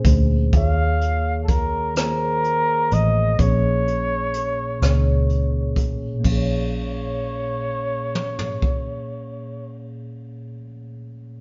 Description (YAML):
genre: slow six-eight R&B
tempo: 42 BPM (dotted quarters)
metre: 6/8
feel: straight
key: Bb minor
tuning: A4 = 442 Hz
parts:
  - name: breathy flugelhorn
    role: melody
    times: 0.0-9.9 s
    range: A4 to F5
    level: -27 LUFS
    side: equal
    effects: none
  - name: mellow tine electric piano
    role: accompaniment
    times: 0.0-11.4 s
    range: Bb2 to Db5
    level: -29 LUFS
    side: equal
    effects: none
  - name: jazz brush drum kit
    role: drums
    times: 0.0-8.8 s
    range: hi-hat, kick drum, ride cymbal, rim click, toms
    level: -26 LUFS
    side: equal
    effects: none
  - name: vintage muted fingered electric bass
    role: bass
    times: 0.1-10.6 s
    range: A1 to Eb2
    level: -23 LUFS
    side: equal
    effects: none
room: moderate stone room reverb, RT60 1.0 s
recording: band playing live in one room, nothing above 7.5 kHz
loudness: -21 LUFS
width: mono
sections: 0.5-6.2 A section; 6.2-9.1 B section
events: none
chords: 0.0 Bbm7; 0.5 Eb9sus4; 3.4 Bbm7